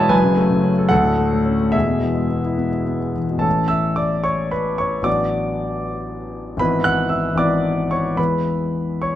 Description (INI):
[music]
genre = classical, romantic character piece for solo piano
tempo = 69-80 BPM (dotted quarters)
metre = 6/8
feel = rubato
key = A major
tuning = A4 = 440 Hz
[part]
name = warm concert grand piano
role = solo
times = 0.0-9.2 s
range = E1 to F#6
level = -17 LUFS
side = left 1 dB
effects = none
[sound]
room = moderate recital hall reverb, RT60 1.3 s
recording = close, detailed microphones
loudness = -17 LUFS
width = side -12 dB against mid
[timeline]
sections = 0.0-3.5 A section; 3.5-9.2 B section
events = none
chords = 0.1 F#m; 0.9 Dmaj7; 1.7 E; 3.5 A; 5.1 Bm7/A; 6.6 E7/G#; 8.2 E